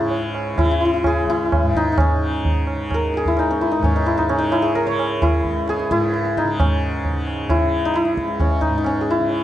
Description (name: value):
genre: indian classical, Hindustani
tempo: 131 BPM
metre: 5/4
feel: straight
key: C# raga shivaranjani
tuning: A4 = 440 Hz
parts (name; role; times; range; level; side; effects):
- santur; melody; 0.0-9.4 s; C#4 to C#5; -19 LUFS; left 1 dB; none
- tanpura; drone; 0.0-9.4 s; C#2 to C#3; -26 LUFS; equal; none
- tabla; percussion; 0.1-9.4 s; none; -22 LUFS; right 1 dB; none
room: light reverb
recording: dark, warm production, nothing above 10.9 kHz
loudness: -17 LUFS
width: side -12 dB against mid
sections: 0.0-6.6 A section; 6.6-9.4 A section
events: speeding up 0.0-9.4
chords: none